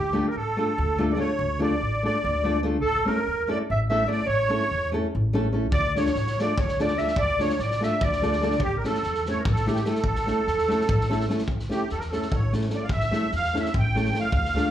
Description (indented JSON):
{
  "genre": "balkan folk, Balkan wedding band",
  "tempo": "291 BPM (eighths)",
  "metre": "7/8",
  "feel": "straight",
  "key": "A phrygian dominant",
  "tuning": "A4 = 439 Hz",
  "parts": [
    { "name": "clear clarinet", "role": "melody", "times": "0.0-11.2 s", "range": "G4 to E5", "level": "-28 LUFS", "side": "right 1 dB", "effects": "slapback echo" },
    { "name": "musette accordion", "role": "second line", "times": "0.0-14.7 s", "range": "G4 to G5", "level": "-28 LUFS", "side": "right 2 dB", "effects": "slapback echo" },
    { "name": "upright bass", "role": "bass", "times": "0.0-14.5 s", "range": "A1 to E2", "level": "-28 LUFS", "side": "equal", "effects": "none" },
    { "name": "nylon-string guitar", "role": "accompaniment", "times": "0.1-14.7 s", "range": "A3 to A4", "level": "-27 LUFS", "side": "left 1 dB", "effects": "slapback echo" },
    { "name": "loose indie drum kit", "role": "percussion", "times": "5.7-14.6 s", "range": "kick drum, snare drum", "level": "-30 LUFS", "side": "equal", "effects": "none" }
  ],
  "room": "light reverb",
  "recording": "live gig heard through the venue's PA, club reverb",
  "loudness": "-22 LUFS",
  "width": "side -11 dB against mid",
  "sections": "0.0-11.5 A section; 11.5-14.7 B section",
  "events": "accordion solo 11.5-14.7",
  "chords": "0.0 Dm; 2.8 A; 5.7 Dm; 8.6 A"
}